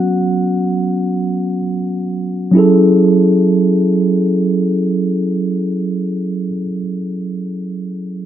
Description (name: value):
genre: R&B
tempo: free time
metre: none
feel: none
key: F# minor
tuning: A4 = 438 Hz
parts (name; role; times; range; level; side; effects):
- mellow tine electric piano; accompaniment; 0.0-8.3 s; F#3 to F#5; -14 LUFS; right 1 dB; slow stereo tremolo
room: light reverb, digital ambience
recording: dark, warm production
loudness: -13 LUFS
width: side -10 dB against mid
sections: 0.0-2.5 A section; 2.5-6.2 B section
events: tine electric piano solo 0.0-2.5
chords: 0.0 F#sus4; 2.5 F#m7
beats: free time